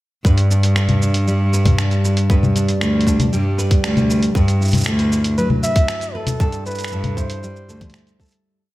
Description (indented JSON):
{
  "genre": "folktronica",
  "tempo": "117 BPM",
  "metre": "4/4",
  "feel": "straight",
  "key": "G major",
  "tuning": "A4 = 439 Hz",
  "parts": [
    { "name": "nylon-string guitar", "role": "arpeggios", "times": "0.2-8.7 s", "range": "G2 to B4", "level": "-23 LUFS", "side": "equal", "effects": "analog delay" },
    { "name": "clear cello", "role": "bass", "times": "0.2-7.9 s", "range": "D2 to G2", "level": "-17 LUFS", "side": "equal", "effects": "none" },
    { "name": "electronic kick drum", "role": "drums", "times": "0.2-8.3 s", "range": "none", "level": "-16 LUFS", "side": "equal", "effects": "overdrive" },
    { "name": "lo-fi sampler-style drum kit", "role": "drums", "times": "0.3-8.4 s", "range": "congas, finger snaps, hi-hat, shaker", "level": "-22 LUFS", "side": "left 1 dB", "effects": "none" },
    { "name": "breathy flugelhorn", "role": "melody", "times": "5.4-8.2 s", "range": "A4 to E5", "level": "-24 LUFS", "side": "equal", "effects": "none" }
  ],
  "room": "light reverb, small room reverb",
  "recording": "none",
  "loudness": "-15 LUFS",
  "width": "side -17 dB against mid",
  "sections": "0.2-8.5 groove",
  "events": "fade-out 5.7-8.5",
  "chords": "0.2 G; 4.4 Esus2; 6.4 Am/G"
}